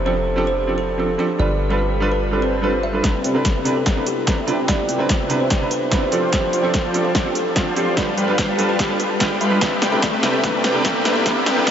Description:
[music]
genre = future bass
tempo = 146 BPM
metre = 4/4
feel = half-time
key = C major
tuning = A4 = 444 Hz
[part]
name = airy breathy pad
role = sustained chords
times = 0.0-11.7 s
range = C3 to B4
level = -29 LUFS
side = equal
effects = none
[part]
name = warm 808-style bass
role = bass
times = 0.0-11.7 s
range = F1 to C2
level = -25 LUFS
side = equal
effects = sidechain pumping, high-pass filter
[part]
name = kalimba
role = melody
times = 0.1-11.7 s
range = F4 to E5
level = -24 LUFS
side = equal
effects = sidechain pumping, low-pass filter, analog delay
[part]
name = warm concert grand piano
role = accompaniment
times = 0.1-11.6 s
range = C3 to B4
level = -23 LUFS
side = right 2 dB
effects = sidechain pumping, tape echo
[part]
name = swell and riser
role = sound effects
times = 2.4-11.7 s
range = none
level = -28 LUFS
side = left 1 dB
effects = none
[part]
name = dense compressed supersaw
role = riff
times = 3.0-11.7 s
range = G3 to C6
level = -22 LUFS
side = equal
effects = sidechain pumping, low-pass filter
[part]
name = big-room dance drum kit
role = drums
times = 3.0-11.7 s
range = hi-hat, snare drum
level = -22 LUFS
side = equal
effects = overdrive, high-pass filter on hats, high-pass filter on toms, high-pass filter on snare, high-pass filter on cymbals, high-pass filter on room
[part]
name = electronic kick drum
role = drums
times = 3.0-11.7 s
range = none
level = -22 LUFS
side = equal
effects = none
[sound]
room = wet huge ambient reverb, RT60 8.1 s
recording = dreamy mix soaked in reverb, high-pass filter, nothing above 7.6 kHz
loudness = -16 LUFS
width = side -8 dB against mid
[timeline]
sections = 0.0-3.0 A section; 3.0-11.7 B section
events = filter sweep on drum 0.0-3.0; swell 2.4-3.0; build-up 3.0-11.7; drum fill 3.0-11.7; filter sweep on supersaw synth 3.0-11.7; filter sweep 3.0-11.7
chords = 0.0 F69; 1.4 G9; 3.0 Cmaj9; 6.1 F69; 8.0 G9; 9.6 Cmaj9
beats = 0.16 0.57 0.98 | 1.40 1.81 2.22 2.63 | 3.04 3.45 3.86 4.27 | 4.68 5.09 5.50 5.92 | 6.33 6.74 7.15 7.56 | 7.97 8.38 8.79 9.20 | 9.62 10.03 10.44 10.85 | 11.26 11.67

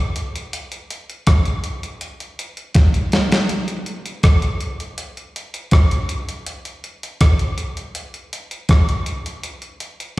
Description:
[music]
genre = reggae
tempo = 81 BPM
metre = 4/4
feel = straight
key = none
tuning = none
[part]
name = crisp 8-bit digital drum machine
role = drums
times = 0.2-10.2 s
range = hi-hat, kick drum, rim click, snare drum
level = -17 LUFS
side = equal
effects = none
[sound]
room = moderate lush hall reverb, RT60 2.2 s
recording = live gig heard through the venue's PA, club reverb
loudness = -16 LUFS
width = side -18 dB against mid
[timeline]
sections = 0.0-3.5 A section; 3.5-10.2 B section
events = drum fill 2.8-3.5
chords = none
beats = | 0.53 1.27 2.02 2.76 | 3.50 4.24 4.98 5.72 | 6.47 7.21 7.95 8.69 | 9.44

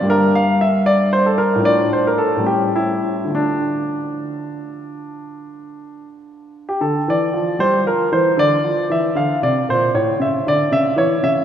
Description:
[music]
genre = classical, baroque-style suite movement for grand piano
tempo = 66-80 BPM (dotted quarters)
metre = 12/8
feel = rubato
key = D minor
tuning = A4 = 441 Hz
[part]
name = warm concert grand piano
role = solo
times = 0.0-11.4 s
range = G2 to F5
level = -16 LUFS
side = equal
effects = none
[sound]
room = wet church reverb, RT60 3.5 s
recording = heard from further back in the room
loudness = -15 LUFS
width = side -9 dB against mid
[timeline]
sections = 0.0-6.8 A section; 6.8-11.4 B section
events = none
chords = 0.1 Gm; 1.7 Dm/A; 2.5 A7; 3.3 Dm; 9.9 A (rootless)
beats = | 0.11 0.87 1.66 2.48 | 3.33 4.22 5.09 5.95 | 6.82 7.61 8.39 9.16 | 9.93 10.69

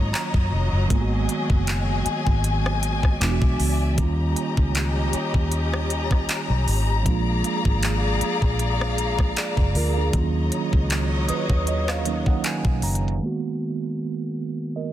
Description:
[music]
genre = contemporary R&B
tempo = 78 BPM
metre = 4/4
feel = swing 54% on 16ths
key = G# dorian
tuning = A4 = 442 Hz
[part]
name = mellow tine electric piano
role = accompaniment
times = 0.0-14.9 s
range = D#3 to A#5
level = -27 LUFS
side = right 4 dB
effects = medium stereo tremolo
[part]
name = warm studio string section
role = sustained chords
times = 0.0-13.2 s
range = F#3 to A#5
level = -28 LUFS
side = left 4 dB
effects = sidechain pumping
[part]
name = vintage muted fingered electric bass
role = bass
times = 0.0-13.2 s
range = E1 to G#2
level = -24 LUFS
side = equal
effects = none
[part]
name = trap drum kit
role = drums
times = 0.1-13.2 s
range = handclaps, hi-hat, kick drum, rim click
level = -24 LUFS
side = equal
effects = none
[part]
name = synth chime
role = texture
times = 0.1-4.3, 11.3-12.4 s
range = A#5 to D#6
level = -37 LUFS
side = left 1 dB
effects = ensemble chorus, digital delay
[sound]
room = little or no reverb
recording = dense, heavily limited modern master, low-pass filter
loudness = -20 LUFS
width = side -12 dB against mid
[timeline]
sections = 0.0-13.2 A section; 13.2-14.9 B section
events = break 0.0-0.9; tine electric piano fill 10.9-13.2; filter sweep 13.2-14.9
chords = 0.0 D#m7; 0.9 G#m7; 3.2 E9; 4.0 D#7; 7.1 A#7; 10.1 D#m7; 13.2 G#m7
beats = 0.13 | 0.90 1.67 2.44 3.21 | 3.98 4.75 5.52 6.29 | 7.06 7.83 8.60 9.37 | 10.13 10.90 11.67 12.44 | 13.21 13.98 14.75

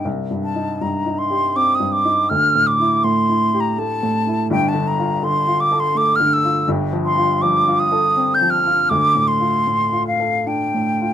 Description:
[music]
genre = classical, impressionist duo for flute and grand piano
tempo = 81 BPM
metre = 3/4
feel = rubato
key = unclear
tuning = A4 = 441 Hz
[part]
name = mellow hollow silver concert flute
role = melody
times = 0.0-11.1 s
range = F5 to G6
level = -17 LUFS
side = equal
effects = none
[part]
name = dark grand piano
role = accompaniment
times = 0.0-11.1 s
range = G1 to A4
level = -20 LUFS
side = equal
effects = none
[sound]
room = little or no reverb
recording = close, detailed microphones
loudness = -15 LUFS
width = side -10 dB against mid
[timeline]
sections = 0.0-11.1 A section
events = none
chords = 0.1 Cm; 2.3 Dsus24; 4.5 Gsus2; 6.7 Fadd9/G; 8.9 Dm7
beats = | 0.06 0.81 1.55 | 2.29 3.04 3.79 | 4.51 5.23 5.97 | 6.70 7.42 8.16 | 8.90 9.66 10.47

